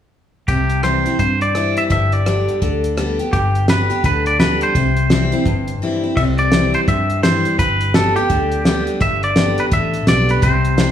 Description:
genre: honky-tonk and classic country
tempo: 169 BPM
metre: 4/4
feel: swing 62% on 8ths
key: C major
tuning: A4 = 440 Hz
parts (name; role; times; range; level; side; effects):
- twangy electric guitar; melody; 0.5-10.9 s; G4 to E5; -19 LUFS; equal; tape echo
- picked steel-string acoustic guitar; accompaniment; 0.5-10.9 s; G2 to G4; -20 LUFS; left 2 dB; none
- vintage muted fingered electric bass; bass; 0.5-10.9 s; G1 to G2; -20 LUFS; equal; none
- cloth-damped thuddy drum kit; drums; 0.5-10.9 s; crash cymbal, hi-hat, kick drum, rim click, snare drum; -20 LUFS; equal; none
room: moderate recital hall reverb, RT60 1.6 s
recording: small room ambience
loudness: -14 LUFS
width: side -10 dB against mid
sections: 0.5-6.2 A section; 6.2-10.9 B section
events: none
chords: 0.5 C; 1.9 G; 4.7 C; 7.6 G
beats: | 0.48 0.84 1.19 1.55 | 1.90 2.26 2.62 2.97 | 3.33 3.68 4.04 4.39 | 4.75 5.10 5.46 5.81 | 6.17 6.52 6.88 7.23 | 7.59 7.94 8.30 8.65 | 9.01 9.36 9.72 10.07 | 10.43 10.78

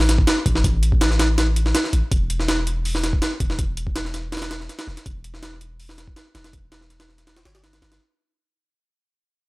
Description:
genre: drum and bass, jungle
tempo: 163 BPM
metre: 4/4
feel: straight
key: unclear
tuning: A4 = 440 Hz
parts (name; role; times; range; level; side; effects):
- long sustained 808-style bass; bass; 0.0-8.0 s; E1 to A1; -22 LUFS; equal; none
- jungle sampler-style drum kit; drums; 0.0-8.0 s; hi-hat, kick drum, snare drum; -21 LUFS; equal; overdrive, studio ambience
room: little or no reverb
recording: dry, gritty hardware recording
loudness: -19 LUFS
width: side -22 dB against mid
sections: 0.0-8.0 A section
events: fade-out 0.0-8.0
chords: none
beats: 0.27 | 0.64 1.01 1.38 1.75 | 2.11 2.48 2.85 3.22 | 3.59 3.95 4.32 4.69 | 5.06 5.43 5.79 6.16 | 6.53 6.90 7.27 7.63

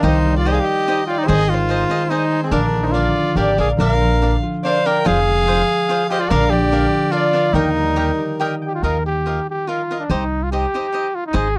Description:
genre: mexican folk, mariachi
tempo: 144 BPM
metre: 3/4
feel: rubato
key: Eb major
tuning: A4 = 440 Hz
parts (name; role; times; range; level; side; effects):
- clear trumpet; melody; 0.0-11.6 s; C4 to C5; -22 LUFS; equal; none
- warm violin; second line; 0.0-8.4 s; Ab4 to G5; -28 LUFS; equal; none
- cavaquinho; accompaniment; 0.0-11.5 s; D4 to G5; -26 LUFS; equal; none
- concert harp; arpeggios; 0.0-10.5 s; D3 to Ab5; -24 LUFS; equal; none
- upright bass; bass; 0.0-11.6 s; F1 to Eb2; -22 LUFS; equal; none
room: light reverb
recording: dry, close 1970s-style studio recording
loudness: -18 LUFS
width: mono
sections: 0.0-8.8 A section; 8.8-11.6 A section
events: none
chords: 0.0 Cm; 1.3 Ab; 2.5 Bb; 5.1 Fm; 6.3 Bb; 7.5 Eb; 8.8 Ebsus2; 10.1 Cm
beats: | 0.04 0.45 0.87 | 1.28 1.70 2.11 | 2.52 2.94 3.36 | 3.79 4.21 4.64 | 5.06 5.47 5.89 | 6.30 6.72 7.13 | 7.54 7.96 8.39 | 8.83 9.25 9.67 | 10.09 10.51 10.93 | 11.35

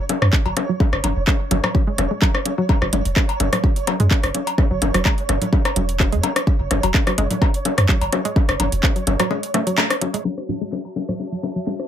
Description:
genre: minimal techno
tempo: 127 BPM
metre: 4/4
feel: swing 53% on 16ths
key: F# minor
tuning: A4 = 445 Hz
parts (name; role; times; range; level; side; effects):
- flickering grainy texture; texture; 0.0-11.9 s; C#5; -30 LUFS; right 5 dB; built-in reverb, sidechain pumping
- house drum kit; drums; 0.1-11.8 s; crash cymbal, handclaps, hi-hat; -23 LUFS; right 2 dB; none
- electronic bongos, rim click, cowbell and congas; percussion; 0.1-11.9 s; none; -22 LUFS; left 4 dB; overdrive
- punchy sub bass; bass; 0.2-9.2 s; E1 to F#2; -21 LUFS; equal; sidechain pumping
- electronic kick drum; drums; 0.3-8.9 s; none; -18 LUFS; equal; none
- hollow square pluck; riff; 0.5-11.7 s; F#3 to A3; -26 LUFS; right 1 dB; chorus, sidechain pumping, tape echo
- clear symphonic string section; texture; 10.3-11.9 s; F#4 to A5; -36 LUFS; left 2 dB; sidechain pumping
room: light reverb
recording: low-pass filter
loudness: -17 LUFS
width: side -10 dB against mid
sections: 0.0-10.3 A section; 10.3-11.9 B section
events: filter sweep on synth arpeggio sound 0.0-10.3, 10.3-11.9; break 9.3-10.3; band accent 9.8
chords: 0.0 F#5; 10.3 F#m7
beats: 0.33 | 0.80 1.27 1.75 2.22 | 2.69 3.16 3.64 4.11 | 4.58 5.05 5.53 6.00 | 6.47 6.94 7.42 7.89 | 8.36 8.83 9.31 9.78 | 10.25 10.72 11.20 11.67

